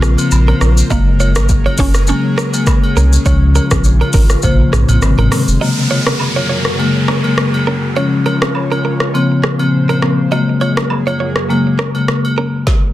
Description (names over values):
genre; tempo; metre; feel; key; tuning
afrobeats; 102 BPM; 4/4; swing 55% on 16ths; unclear; A4 = 439 Hz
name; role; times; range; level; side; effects
marimba with medium mallets; accompaniment; 0.0-12.1 s; C3 to C5; -15 LUFS; left 2 dB; none
airy breathy pad; sustained chords; 0.0-12.6 s; Gb2 to Db5; -24 LUFS; right 1 dB; chorus
direct-recorded clean electric guitar; riff; 0.0-12.5 s; C4 to Eb5; -22 LUFS; right 6 dB; spring reverb, digital delay
warm sub bass; bass; 0.0-5.6 s; F1 to Db2; -12 LUFS; equal; none
afro-pop drum kit; drums; 0.0-12.8 s; hi-hat, kick drum, rim click, shaker, snare drum, toms; -16 LUFS; equal; overdrive
agogo bells and woodblock; percussion; 0.2-12.4 s; none; -25 LUFS; right 2 dB; none
mallet-like synth pluck; melody; 0.9-5.0 s; Bb3 to Db4; -22 LUFS; right 3 dB; chorus, digital delay
downlifter; sound effects; 5.6-10.3 s; none; -23 LUFS; equal; none
room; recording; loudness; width
light reverb; dense, heavily limited modern master; -11 LUFS; side -14 dB against mid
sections
0.0-5.6 A section; 5.6-12.9 B section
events
none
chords
0.0 Bbmadd9; 0.9 Gbadd9; 3.3 Db; 4.4 Bbmadd9; 5.0 Ab; 5.6 Gbadd9; 8.0 Db; 9.1 Bbmadd9; 10.3 Gbadd9